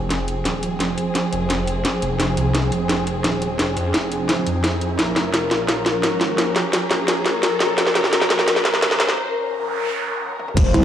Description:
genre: dark technical drum and bass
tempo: 172 BPM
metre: 4/4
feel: straight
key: unclear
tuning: A4 = 440 Hz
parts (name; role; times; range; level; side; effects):
- dark studio string section; sustained chords; 0.0-10.8 s; F3 to C5; -23 LUFS; left 1 dB; sidechain pumping
- phased detuned saw bass; bass; 0.0-10.7 s; Eb1 to F2; -25 LUFS; equal; phaser, tube saturation
- riser, noise sweep and impact; sound effects; 1.5-10.8 s; none; -27 LUFS; equal; none
- drum and bass drum kit; drums; 0.1-10.8 s; crash cymbal, hi-hat, snare drum, toms; -20 LUFS; equal; none
- electronic kick drum; drums; 10.6 s; none; -17 LUFS; equal; none
- pulsing pluck wobble bass; bass; 10.7-10.8 s; C2; -14 LUFS; equal; chorus
room: moderate plate reverb, RT60 1.6 s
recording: played on a big sound system in a bare room, large studio reverb, high-pass filter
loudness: -18 LUFS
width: side -10 dB against mid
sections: 0.0-10.6 A section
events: build-up 0.0-10.6; drum fill 0.0-9.2, 10.4; filter sweep 0.0-10.6; riser 1.5-9.2; break 9.2-10.6; noise sweep 9.2-10.6; impact 10.6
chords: 0.0 Fm; 5.0 Bbm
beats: 0.10 0.45 | 0.80 1.15 1.50 1.85 | 2.20 2.55 2.90 3.24 | 3.59 3.94 4.29 4.64 | 4.99 5.34 5.69 6.04 | 6.38 6.73 7.08 7.43 | 7.78 8.13 8.48 8.82 | 9.17 9.52 9.87 10.22 | 10.57

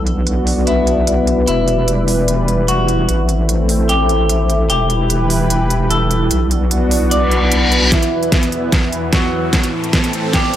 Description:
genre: heavy wobble dubstep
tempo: 149 BPM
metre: 4/4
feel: half-time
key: E minor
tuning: A4 = 441 Hz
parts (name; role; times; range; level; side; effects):
- lush unison pad; sustained chords; 0.0-10.6 s; E2 to B4; -20 LUFS; equal; chorus, phaser, sidechain pumping
- wobble bass; bass; 0.0-7.9 s; E1 to B1; -16 LUFS; equal; chorus, overdrive
- deep dark ambient pad; texture; 0.0-10.6 s; B3 to C6; -22 LUFS; left 1 dB; chorus, built-in reverb, sidechain pumping
- dubstep drum kit; drums; 0.1-10.6 s; hi-hat, snare drum; -19 LUFS; right 1 dB; low-pass filter on hats, small room ambience, low-pass filter on snare
- clean electric guitar; melody; 0.7-10.6 s; E3 to D5; -20 LUFS; left 1 dB; phaser, digital delay
- reverse cymbal and riser; sound effects; 7.2-10.6 s; none; -21 LUFS; left 2 dB; none
- electronic kick drum; drums; 7.9-10.4 s; none; -17 LUFS; equal; overdrive, small room ambience
room: moderate digital room reverb, RT60 1.1 s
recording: none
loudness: -13 LUFS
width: side -11 dB against mid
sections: 0.0-7.9 A section; 7.9-10.6 B section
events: filter sweep on analog synth pad 0.0-7.9; reverse cymbal 7.2-7.9; build-up 7.9-10.6; drum fill 7.9-10.6; riser 7.9-10.6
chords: 0.0 Bm; 1.5 Em; 3.1 Am; 4.7 Em; 6.3 Bm; 7.9 E5; 9.5 Am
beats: 0.27 0.67 1.07 | 1.48 1.88 2.28 2.68 | 3.09 3.49 3.89 4.29 | 4.70 5.10 5.50 5.91 | 6.31 6.71 7.11 7.52 | 7.92 8.32 8.72 9.13 | 9.53 9.93 10.33

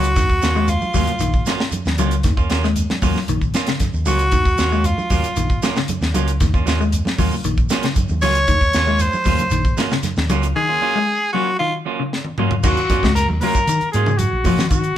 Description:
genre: afrobeat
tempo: 116 BPM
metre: 4/4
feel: straight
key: Eb dorian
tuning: A4 = 442 Hz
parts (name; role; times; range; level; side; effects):
- raspy tenor saxophone; melody; 0.0-11.8 s; F4 to Db5; -19 LUFS; equal; none
- clean electric guitar; arpeggios; 0.0-14.9 s; Db3 to Ab3; -24 LUFS; left 6 dB; none
- clean electric guitar; stabs; 0.0-14.6 s; Gb3 to F4; -26 LUFS; right 7 dB; none
- hollow-body short-scale fingered electric bass; bass; 0.0-14.9 s; Bb1 to Eb3; -21 LUFS; equal; none
- tight funk drum kit; drums; 0.0-15.0 s; crash cymbal, hi-hat, kick drum, snare drum, toms; -21 LUFS; equal; none
- shekere; percussion; 0.0-14.8 s; none; -29 LUFS; right 4 dB; none
- congas; percussion; 0.2-14.8 s; none; -29 LUFS; right 3 dB; none
- warm trumpet; melody; 12.6-15.0 s; Gb4 to Bb4; -20 LUFS; left 1 dB; none
room: moderate stone room reverb, RT60 1.1 s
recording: band playing live in one room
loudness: -16 LUFS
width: side -11 dB against mid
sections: 0.0-12.6 A section; 12.6-15.0 B section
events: tenor saxophone solo 0.0-12.6; break 10.6-12.6; drum fill 12.1-12.6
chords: 0.0 Ebm9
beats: | 0.17 0.69 1.21 1.73 | 2.25 2.77 3.29 3.81 | 4.33 4.85 5.37 5.89 | 6.41 6.93 7.45 7.96 | 8.48 9.00 9.52 10.04 | 10.56 11.08 11.60 12.12 | 12.64 13.16 13.68 14.20 | 14.71

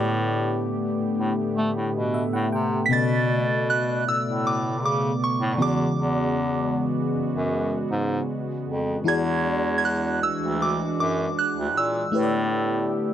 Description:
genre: contemporary R&B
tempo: 78 BPM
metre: 4/4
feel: straight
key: unclear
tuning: A4 = 440 Hz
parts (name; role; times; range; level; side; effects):
- soft synth bell; melody; 0.0-13.1 s; C#6 to B6; -27 LUFS; right 2 dB; chorus
- FM electric piano; accompaniment; 0.0-13.1 s; A2 to G5; -27 LUFS; left 3 dB; chorus, phaser
- warm analog pad; sustained chords; 0.0-13.1 s; B2 to D5; -28 LUFS; right 1 dB; chorus
- bright bass clarinet; bass; 0.0-13.0 s; D2 to A3; -26 LUFS; equal; none
room: studio ambience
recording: dark, warm production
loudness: -22 LUFS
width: side -10 dB against mid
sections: 0.0-13.1 A section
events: FM electric piano fill 1.8-2.9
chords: 0.0 A9sus4; 2.9 Bm9; 5.6 E13; 9.1 E9; 12.1 A9sus4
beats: 0.60 1.37 2.14 | 2.91 3.68 4.45 5.22 | 5.99 6.75 7.52 8.29 | 9.06 9.83 10.60 11.37 | 12.14 12.91

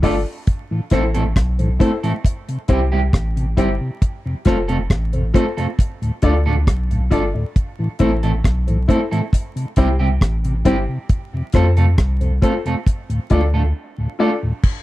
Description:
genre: roots reggae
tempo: 68 BPM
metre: 4/4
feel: straight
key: unclear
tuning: A4 = 440 Hz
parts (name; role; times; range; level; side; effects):
- electric guitar at the edge of break-up; accompaniment; 0.0-14.3 s; G3 to A4; -25 LUFS; right 5 dB; spring reverb, dub echo
- warm upright piano; stabs; 0.0-14.3 s; E4 to D5; -22 LUFS; left 5 dB; none
- soft dub sub bass; bass; 0.0-13.7 s; F1 to F2; -18 LUFS; equal; none
- deep reggae drum kit; drums; 0.0-14.8 s; crash cymbal, hi-hat, kick drum, rim click; -16 LUFS; equal; none
- mellow tonewheel organ; accompaniment; 0.7-14.5 s; D2 to F4; -20 LUFS; left 1 dB; chorus vibrato, slow rotary speaker
room: little or no reverb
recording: dry, close 1970s-style studio recording, vinyl crackle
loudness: -16 LUFS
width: side -16 dB against mid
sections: 0.0-14.6 A section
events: break 13.8-14.6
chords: 0.5 Am; 2.2 C; 4.0 F; 5.8 Dm; 7.6 Am; 9.3 C; 11.1 F; 12.9 Dm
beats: | 0.47 1.36 2.25 3.13 | 4.02 4.90 5.79 6.67 | 7.56 8.44 9.33 10.21 | 11.10 11.98 12.87 13.75 | 14.63

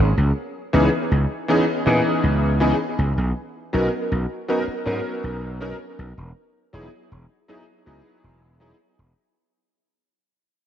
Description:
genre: vaporwave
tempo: 80 BPM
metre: 4/4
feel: straight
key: unclear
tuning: A4 = 442 Hz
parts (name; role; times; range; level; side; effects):
- gritty slap bass; bass; 0.0-9.1 s; E1 to A#2; -20 LUFS; equal; overdrive
- clear electric grand piano; accompaniment; 0.7-8.8 s; E3 to A#4; -22 LUFS; equal; ensemble chorus, tape echo
room: moderate plate reverb, RT60 2.6 s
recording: dreamy mix soaked in reverb, cassette tape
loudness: -19 LUFS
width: side -10 dB against mid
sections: 0.0-9.2 A section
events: fade-out 0.0-9.2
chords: 0.2 C#m9; 3.2 Bmaj9; 6.2 Emaj9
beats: | 0.17 0.92 1.67 2.42 | 3.17 3.92 4.67 5.42 | 6.17 6.92 7.67 8.42

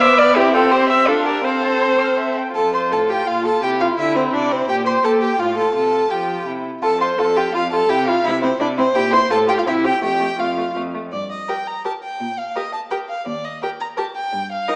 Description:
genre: quick classical-period movement for string quartet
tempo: 168 BPM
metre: 3/4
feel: straight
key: F major, G minor from 11.1 s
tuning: A4 = 440 Hz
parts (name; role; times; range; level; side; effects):
- clear violin; melody; 0.0-14.8 s; E4 to C6; -24 LUFS; equal; none
- warm violin; second line; 0.0-14.8 s; A3 to F6; -27 LUFS; equal; none
- clear viola; accompaniment; 0.0-14.8 s; B3 to C5; -22 LUFS; equal; none
- clear cello; bass; 0.0-14.6 s; Eb2 to E5; -24 LUFS; equal; none
room: moderate recital hall reverb, RT60 1.7 s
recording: vinyl crackle, small speaker sound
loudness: -19 LUFS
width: mono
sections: 0.0-2.6 A section; 2.6-11.1 B section; 11.1-14.8 C section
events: none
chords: 0.4 C; 1.1 Dm; 1.4 F/C; 2.6 F; 3.6 C; 4.7 Gmadd9/Bb; 5.4 F/A; 5.7 Csus4; 6.5 C; 6.8 Fadd9; 7.9 C; 9.0 C7/Bb; 9.3 F/A; 9.7 C; 10.0 F; 11.1 Gm; 12.2 Gm/Bb; 13.3 Eb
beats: 0.01 | 0.36 0.72 1.08 | 1.45 1.82 2.19 | 2.55 2.91 3.27 | 3.63 3.98 4.33 | 4.69 5.04 5.39 | 5.75 6.10 6.46 | 6.83 7.19 7.54 | 7.90 8.25 8.60 | 8.95 9.31 9.66 | 10.03 10.39 10.76 | 11.12 11.48 11.84 | 12.20 12.55 12.91 | 13.27 13.62 13.97 | 14.33 14.68

